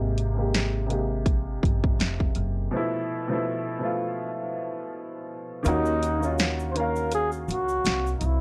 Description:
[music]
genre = lo-fi hip hop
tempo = 82 BPM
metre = 4/4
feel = swing 57% on 16ths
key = unclear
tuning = A4 = 441 Hz
[part]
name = warm upright piano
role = accompaniment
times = 0.0-8.4 s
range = B2 to F5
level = -31 LUFS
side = equal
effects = cassette tape, low-pass filter, plate reverb
[part]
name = upright bass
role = bass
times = 0.0-8.4 s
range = F1 to Eb2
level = -30 LUFS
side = equal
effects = none
[part]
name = house drum kit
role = drums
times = 0.2-8.4 s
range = hi-hat, kick drum, snare drum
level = -28 LUFS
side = equal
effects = vintage 12-bit sampler grit
[part]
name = tube shaker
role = percussion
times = 5.6-8.4 s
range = none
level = -51 LUFS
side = equal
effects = none
[part]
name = breathy flugelhorn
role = melody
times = 5.7-8.4 s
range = Eb4 to C5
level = -29 LUFS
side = equal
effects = low-pass filter, plate reverb
[sound]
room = moderate studio reverb, RT60 0.6 s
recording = none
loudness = -26 LUFS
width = mono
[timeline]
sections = 0.0-5.7 A section; 5.7-8.4 B section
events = filter sweep on upright piano 0.0-5.7; break 2.7-5.7; kick muted 5.7-8.4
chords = 0.0 Abmaj9; 2.7 Fmaj7#11/B; 5.7 Ebm7

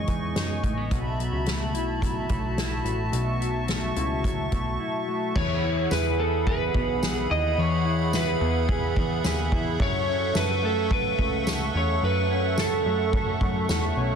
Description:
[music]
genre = dream pop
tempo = 108 BPM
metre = 4/4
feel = straight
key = E major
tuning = A4 = 438 Hz
[part]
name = hollow soft pad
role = sustained chords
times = 0.0-14.2 s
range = E3 to C#6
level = -31 LUFS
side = equal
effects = chorus
[part]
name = mellow electric guitar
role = arpeggios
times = 0.0-14.2 s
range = F#2 to A4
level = -30 LUFS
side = left 2 dB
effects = wide subtle chorus, tape echo
[part]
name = fat analog bass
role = bass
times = 0.0-14.2 s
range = A1 to F#2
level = -29 LUFS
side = equal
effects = none
[part]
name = soft-mallet drum kit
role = drums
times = 0.1-14.1 s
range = crash cymbal, hi-hat, kick drum, ride cymbal, snare drum, tambourine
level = -29 LUFS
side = equal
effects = none
[part]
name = electric slide guitar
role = melody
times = 5.4-13.9 s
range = A4 to D#5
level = -27 LUFS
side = right 2 dB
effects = tape echo
[sound]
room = light reverb, small room ambience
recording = dense, heavily limited modern master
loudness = -23 LUFS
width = side -7 dB against mid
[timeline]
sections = 0.0-5.4 A section; 5.4-14.2 B section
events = none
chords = 0.0 Emaj7; 0.9 B7sus4; 5.4 Eadd9; 9.8 F#m7

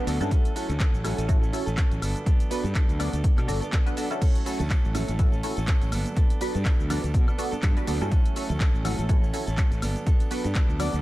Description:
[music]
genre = filtered disco house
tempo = 123 BPM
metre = 4/4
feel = swing 56% on 16ths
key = D major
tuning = A4 = 440 Hz
[part]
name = funky polysynth comp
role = accompaniment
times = 0.0-11.0 s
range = B3 to D5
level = -32 LUFS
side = right 1 dB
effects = chorus, phaser, sidechain pumping
[part]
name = direct-recorded clean electric guitar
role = riff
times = 0.0-11.0 s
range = F#3 to A4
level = -35 LUFS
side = right 2 dB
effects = sidechain pumping
[part]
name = fuzz fingered electric bass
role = bass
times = 0.1-11.0 s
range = G1 to B2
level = -29 LUFS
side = equal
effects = overdrive, tube saturation, sidechain pumping
[part]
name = punchy analog drum machine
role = drums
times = 0.1-11.0 s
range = crash cymbal, handclaps, hi-hat, shaker, woodblock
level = -36 LUFS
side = equal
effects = sidechain pumping on hats, sidechain pumping on perc, sidechain pumping on cymbals
[part]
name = electronic kick drum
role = drums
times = 0.3-10.7 s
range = none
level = -22 LUFS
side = equal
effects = none
[part]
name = tambourine and congas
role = percussion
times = 4.2-11.0 s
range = none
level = -38 LUFS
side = right 3 dB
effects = none
[sound]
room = digital ambience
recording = none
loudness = -22 LUFS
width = side -17 dB against mid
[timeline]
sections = 0.0-11.0 A section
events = none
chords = 0.3 Dmaj7 (rootless); 2.0 Gmaj9; 4.2 Dmaj7 (rootless); 5.9 Gmaj9; 8.1 Dmaj7 (rootless); 9.8 Gmaj9

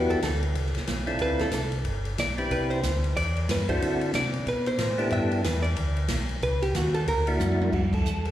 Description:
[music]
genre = soul jazz organ trio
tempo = 184 BPM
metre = 4/4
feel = swing 61% on 8ths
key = unclear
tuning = A4 = 436 Hz
[part]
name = percussive tonewheel organ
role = melody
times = 0.0-8.3 s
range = A#3 to B4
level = -29 LUFS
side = equal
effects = slow rotary speaker, slapback echo
[part]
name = hollow-body jazz guitar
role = accompaniment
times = 0.0-7.6 s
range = F#4 to E5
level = -30 LUFS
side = right 1 dB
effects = slapback echo
[part]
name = mellow tonewheel organ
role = bass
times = 0.0-8.3 s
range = G1 to D3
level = -28 LUFS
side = equal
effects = slow rotary speaker
[part]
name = open jazz drum kit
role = drums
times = 0.1-8.3 s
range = crash cymbal, hi-hat, kick drum, ride cymbal, snare drum, toms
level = -31 LUFS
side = equal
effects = slapback echo
[sound]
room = light reverb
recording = live gig heard through the venue's PA, recital hall reverb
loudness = -24 LUFS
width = side -12 dB against mid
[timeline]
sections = 0.0-7.7 A section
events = hollow-body jazz guitar solo 0.0-7.7; drum fill 7.4-7.7; band accent 7.9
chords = 0.0 Em7; 1.2 Dm7; 1.9 G6; 2.5 Cmaj7; 3.8 D9; 5.1 G6; 6.4 B9/C#; 7.1 F#aug7; 7.7 F#m7

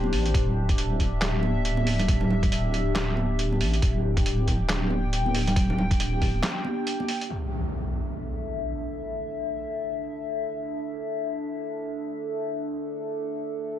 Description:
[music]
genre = deep dubstep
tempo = 138 BPM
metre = 4/4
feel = swing 59% on 16ths, half-time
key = unclear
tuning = A4 = 440 Hz
[part]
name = dark analog pad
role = sustained chords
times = 0.0-13.8 s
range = D4 to G5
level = -30 LUFS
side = left 2 dB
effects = chorus, phaser
[part]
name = deep soft wobble bass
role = bass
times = 0.0-6.4 s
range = D1 to A1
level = -25 LUFS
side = equal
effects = chorus
[part]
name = congas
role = percussion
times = 0.0-7.1 s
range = none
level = -31 LUFS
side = right 2 dB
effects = dub echo
[part]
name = trip hop sampler-style drum kit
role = drums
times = 0.1-7.3 s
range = handclaps, hi-hat, snare drum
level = -30 LUFS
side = right 1 dB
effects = none
[part]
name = electronic kick drum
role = drums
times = 0.3-6.3 s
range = none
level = -25 LUFS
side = equal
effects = none
[part]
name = impact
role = sound effects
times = 7.3-9.0 s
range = none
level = -32 LUFS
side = equal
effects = none
[sound]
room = light reverb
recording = none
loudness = -24 LUFS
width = side -11 dB against mid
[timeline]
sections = 0.0-7.3 A section; 7.3-13.8 B section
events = drop 0.0-7.3; break 6.4-7.3; impact 7.3-9.0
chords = 0.0 D5

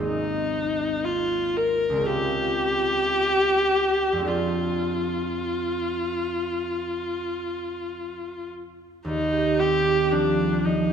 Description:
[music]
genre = classical, impressionist duo for viola and harp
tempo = 49-61 BPM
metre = 4/4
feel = rubato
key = F minor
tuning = A4 = 439 Hz
[part]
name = concert harp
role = accompaniment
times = 0.0-10.9 s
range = Ab1 to G4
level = -27 LUFS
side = right 1 dB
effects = none
[part]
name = rich viola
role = melody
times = 0.1-10.9 s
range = D4 to Bb4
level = -24 LUFS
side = equal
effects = none
[sound]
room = wet concert hall reverb, RT60 2.4 s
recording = minimal, uncompressed stereo recording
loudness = -22 LUFS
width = side -7 dB against mid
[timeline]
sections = 0.0-9.1 A section; 9.1-10.9 B section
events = none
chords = 0.0 Abadd9; 2.1 Dbmaj7; 4.3 Fm6; 9.1 Eb69

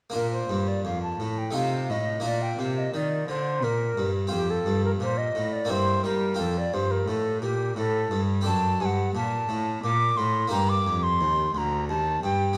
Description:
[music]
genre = classical, baroque-style sonata movement with continuo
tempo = 87 BPM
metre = 3/4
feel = straight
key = Bb major, G minor from 8.5 s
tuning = A4 = 440 Hz
[part]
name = bright wooden flute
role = melody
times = 0.1-12.6 s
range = G4 to D6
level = -29 LUFS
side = equal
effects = none
[part]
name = harpsichord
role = accompaniment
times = 0.1-12.6 s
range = D2 to A4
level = -32 LUFS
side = equal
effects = none
[part]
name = rich cello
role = bass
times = 0.1-12.6 s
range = D2 to G3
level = -31 LUFS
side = equal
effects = none
[sound]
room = moderate recital hall reverb, RT60 1.4 s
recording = vinyl crackle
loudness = -26 LUFS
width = mono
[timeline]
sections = 0.1-12.6 A section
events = none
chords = 0.1 Bb; 1.6 F7/C; 2.2 Bb; 4.3 F; 5.7 C7/G; 6.4 F; 8.5 D7/F#; 10.5 Gm

